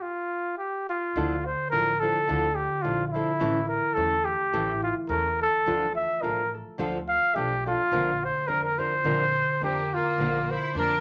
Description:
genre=mexican folk, mariachi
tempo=106 BPM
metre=2/4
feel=swing 54% on 8ths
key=D minor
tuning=A4 = 440 Hz
part: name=mellow trumpet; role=melody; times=0.0-11.0 s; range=E4 to F5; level=-28 LUFS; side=equal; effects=none
part: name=nylon-string guitar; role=accompaniment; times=1.2-10.9 s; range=A2 to Bb4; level=-34 LUFS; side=equal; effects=none
part: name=concert harp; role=arpeggios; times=1.2-11.0 s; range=D3 to A4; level=-36 LUFS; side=equal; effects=none
part: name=upright bass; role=bass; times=1.2-11.0 s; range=A1 to F2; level=-39 LUFS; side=equal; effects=none
part: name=bright studio violin section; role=second line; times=9.6-11.0 s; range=Bb3 to E4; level=-36 LUFS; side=equal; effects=none
room=wet club reverb, RT60 0.7 s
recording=none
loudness=-26 LUFS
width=mono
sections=0.0-1.2 A section; 1.2-11.0 B section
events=stop 0.0-1.2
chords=0.0 N.C.; 1.2 Dmadd9; 3.4 A; 5.7 Dm; 7.9 Bbadd9; 10.2 Bb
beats=| 0.02 0.59 | 1.16 1.72 | 2.28 2.84 | 3.40 3.96 | 4.52 5.09 | 5.66 6.22 | 6.79 7.35 | 7.91 8.47 | 9.04 9.60 | 10.17 10.74

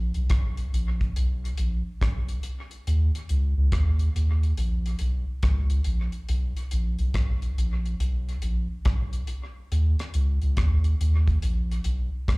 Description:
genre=roots reggae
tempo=70 BPM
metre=4/4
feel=swing 65% on 16ths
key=unclear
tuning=A4 = 440 Hz
part: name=soft dub sub bass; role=bass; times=0.0-12.4 s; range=Bb1 to Eb2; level=-23 LUFS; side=equal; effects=none
part: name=deep reggae drum kit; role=drums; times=0.1-12.4 s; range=hi-hat, kick drum, rim click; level=-29 LUFS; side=equal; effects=none
room=little or no reverb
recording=live gig heard through the venue's PA, club reverb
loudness=-23 LUFS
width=side -27 dB against mid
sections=0.0-12.4 A section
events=none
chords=none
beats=0.30 1.16 2.01 | 2.87 3.73 4.58 5.44 | 6.29 7.15 8.01 8.86 | 9.72 10.57 11.43 12.29

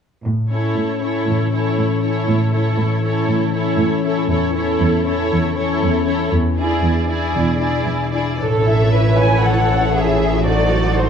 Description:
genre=classical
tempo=118 BPM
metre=4/4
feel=rubato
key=A major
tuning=A4 = 442 Hz
part: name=concert harp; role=arpeggios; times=0.3-11.1 s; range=E2 to C#5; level=-21 LUFS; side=left 6 dB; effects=none
part: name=rich symphonic cello section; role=bass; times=0.3-11.1 s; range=E2 to B4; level=-21 LUFS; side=right 3 dB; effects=none
part: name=warm symphonic violin section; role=melody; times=0.5-11.1 s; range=C5 to G#5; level=-24 LUFS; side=left 2 dB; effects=none
part: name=rich symphonic violin section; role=second line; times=0.5-11.1 s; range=G#4 to C#5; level=-24 LUFS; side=equal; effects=none
part: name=clear symphonic viola section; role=accompaniment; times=0.5-11.1 s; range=E3 to E4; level=-24 LUFS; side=right 3 dB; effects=none
part: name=rich studio double bass section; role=bass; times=8.4-11.1 s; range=A1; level=-18 LUFS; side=right 3 dB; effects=none
room=wet recital hall reverb, RT60 1.4 s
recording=dark, warm production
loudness=-15 LUFS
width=side -7 dB against mid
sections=0.3-8.4 A section; 8.4-11.1 B section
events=none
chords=0.3 A; 4.3 A/E; 6.3 E7; 8.4 A; 10.5 Adim7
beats=| 0.25 0.76 1.27 1.78 | 2.28 2.78 3.29 3.79 | 4.30 4.81 5.31 5.81 | 6.32 6.83 7.34 7.86 | 8.40 8.92 9.44 9.94 | 10.46 10.96

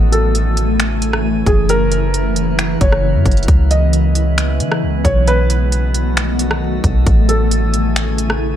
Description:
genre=hip hop, atmospheric cloud-rap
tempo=134 BPM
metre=4/4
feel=half-time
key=unclear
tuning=A4 = 439 Hz
part: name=ethereal airy pad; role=sustained chords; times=0.0-8.6 s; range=C#3 to F#4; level=-19 LUFS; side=equal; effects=ensemble chorus, built-in reverb, sidechain pumping
part: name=soft 808-style bass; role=bass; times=0.0-8.6 s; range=F#1 to E3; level=-16 LUFS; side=equal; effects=none
part: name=drifting glass-harmonics texture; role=texture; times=0.0-8.6 s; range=B3 to G#5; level=-29 LUFS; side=left 1 dB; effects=chorus, built-in reverb
part: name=felt-muted upright piano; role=melody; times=0.1-8.6 s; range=G#4 to D#5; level=-21 LUFS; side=equal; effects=tape echo
part: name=trap drum kit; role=drums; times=0.1-8.4 s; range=finger snaps, hi-hat, kick drum, rim click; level=-17 LUFS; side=equal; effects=none
room=digital ambience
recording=none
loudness=-12 LUFS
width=side -10 dB against mid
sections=0.0-8.6 A section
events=none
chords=0.0 Amaj7; 1.7 F#7; 3.5 C#m7; 5.3 B7; 7.1 Amaj7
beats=0.35 0.80 1.25 | 1.69 2.14 2.59 3.04 | 3.48 3.93 4.38 4.83 | 5.27 5.72 6.17 6.62 | 7.07 7.51 7.96 8.41

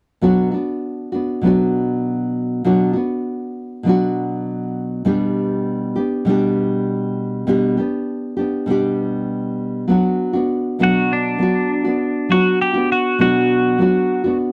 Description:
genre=acoustic pop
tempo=100 BPM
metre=4/4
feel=straight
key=B minor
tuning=A4 = 439 Hz
part: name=nylon-string guitar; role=accompaniment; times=0.2-14.5 s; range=B2 to G4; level=-19 LUFS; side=equal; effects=none
part: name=twelve-string electric guitar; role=melody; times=10.8-14.4 s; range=D4 to G4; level=-22 LUFS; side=equal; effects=none
room=light reverb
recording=dry, close 1970s-style studio recording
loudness=-19 LUFS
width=mono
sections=0.2-9.9 A section; 9.9-14.5 B section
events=none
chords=0.2 Bm; 5.1 G/B; 9.9 Bm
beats=| 0.23 0.83 1.44 2.04 | 2.65 3.25 3.86 4.46 | 5.07 5.67 6.27 6.88 | 7.48 8.08 8.69 9.29 | 9.89 10.49 11.09 11.70 | 12.30 12.90 13.50 14.10

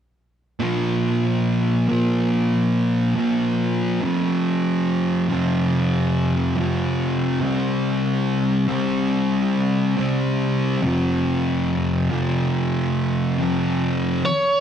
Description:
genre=rock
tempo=70 BPM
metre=4/4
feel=straight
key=unclear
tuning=A4 = 445 Hz
part: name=thick fuzz guitar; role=riff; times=0.6-14.2 s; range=F2 to C4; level=-19 LUFS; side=equal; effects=distortion
part: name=biting lead guitar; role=melody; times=14.3-14.6 s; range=Db5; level=-17 LUFS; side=right 1 dB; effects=overdrive
room=wet scoring stage reverb, RT60 1.8 s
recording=dark, warm production, faint mains hum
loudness=-19 LUFS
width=side -9 dB against mid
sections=0.6-14.3 A section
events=none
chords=0.6 Bb5; 4.0 F5; 7.4 C5; 10.8 F5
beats=| 0.61 1.46 2.32 3.17 | 4.02 4.87 5.73 6.58 | 7.43 8.29 9.14 9.99 | 10.85 11.70 12.55 13.41 | 14.26

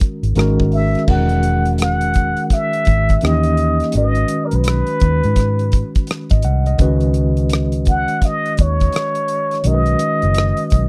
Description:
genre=R&B, neo-soul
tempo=84 BPM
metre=4/4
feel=swing 63% on 16ths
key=unclear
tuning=A4 = 441 Hz
part: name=tine electric piano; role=accompaniment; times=0.0-10.9 s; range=D#3 to F#5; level=-23 LUFS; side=equal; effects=none
part: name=damped 70s drum kit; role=drums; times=0.0-10.9 s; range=crash cymbal, hi-hat, kick drum, rim click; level=-20 LUFS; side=equal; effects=none
part: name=vintage muted fingered electric bass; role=bass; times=0.2-10.9 s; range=E1 to G#2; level=-19 LUFS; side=equal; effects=none
part: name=trumpet with plunger mute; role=melody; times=0.7-10.9 s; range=A#4 to F#5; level=-22 LUFS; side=equal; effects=none
room=little or no reverb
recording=dry, close 1970s-style studio recording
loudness=-16 LUFS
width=mono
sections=0.0-1.1 A section; 1.1-10.9 B section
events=none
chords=0.4 G#sus2; 1.1 Emaj9; 3.2 D#7b9; 3.9 G#m7; 6.8 C#9sus4; 9.6 B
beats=0.36 | 1.08 1.79 2.51 3.22 | 3.93 4.65 5.36 6.08 | 6.79 7.51 8.22 8.93 | 9.65 10.36

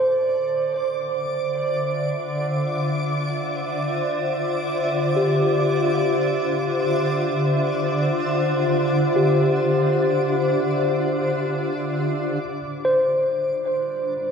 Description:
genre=ambient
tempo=free time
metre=none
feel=none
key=unclear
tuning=A4 = 440 Hz
part: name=granular cloud pad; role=sustained chords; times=0.1-14.3 s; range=D3 to A5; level=-22 LUFS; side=equal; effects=built-in reverb
part: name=tine electric piano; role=arpeggios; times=0.0-14.3 s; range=G4 to C5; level=-24 LUFS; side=equal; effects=medium tremolo, diffuse ambient delay
part: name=backwards swelling texture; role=texture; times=0.0-12.4 s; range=D5 to D6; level=-30 LUFS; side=right 1 dB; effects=built-in reverb
room=wet lush hall reverb, RT60 3.2 s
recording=worn, warbling old tape, cassette tape, warbly pitch drift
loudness=-20 LUFS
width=side -6 dB against mid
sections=0.0-12.4 A section; 12.4-14.3 B section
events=none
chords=0.0 Dm7; 12.4 Gm7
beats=free time

